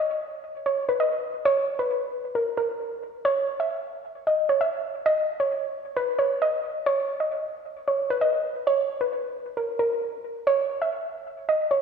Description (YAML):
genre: hip hop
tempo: 133 BPM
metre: 4/4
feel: half-time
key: unclear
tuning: A4 = 440 Hz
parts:
  - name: soft round pluck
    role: solo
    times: 0.0-11.8 s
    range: Bb4 to Fb5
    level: -23 LUFS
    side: right 1 dB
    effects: chorus, low-pass filter, analog delay
room: wet lush hall reverb, RT60 1.7 s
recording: dreamy mix soaked in reverb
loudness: -23 LUFS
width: side -6 dB against mid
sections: 0.0-11.8 A section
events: none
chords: none